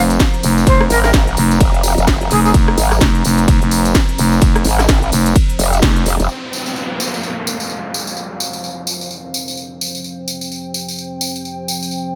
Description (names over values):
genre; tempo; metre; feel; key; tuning
bass house; 128 BPM; 4/4; swing 59% on 16ths; F minor; A4 = 444 Hz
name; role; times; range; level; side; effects
dark analog pad; sustained chords; 0.0-12.2 s; F3 to Bb5; -27 LUFS; equal; chorus, sidechain pumping
growling FM bass; bass; 0.0-6.0 s; F1; -16 LUFS; equal; overdrive, sidechain pumping
house drum kit; drums; 0.1-6.3 s; hi-hat, ride cymbal, rim click, snare drum; -22 LUFS; equal; none
tambourine; percussion; 0.1-12.0 s; none; -26 LUFS; equal; none
electronic kick drum; drums; 0.2-5.9 s; none; -16 LUFS; equal; none
breathy jazz flute; melody; 0.7-2.5 s; Ab4 to C5; -21 LUFS; equal; digital delay
growl bass; bass; 0.9-6.3 s; F1 to Ab1; -18 LUFS; equal; chorus, tube saturation, sidechain pumping
downlifter; sound effects; 6.3-10.0 s; none; -28 LUFS; equal; none
room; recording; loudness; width
little or no reverb; none; -15 LUFS; mono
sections
0.0-6.3 A section; 6.3-12.2 B section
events
drop 0.0-6.3; band accent 5.8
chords
0.0 F5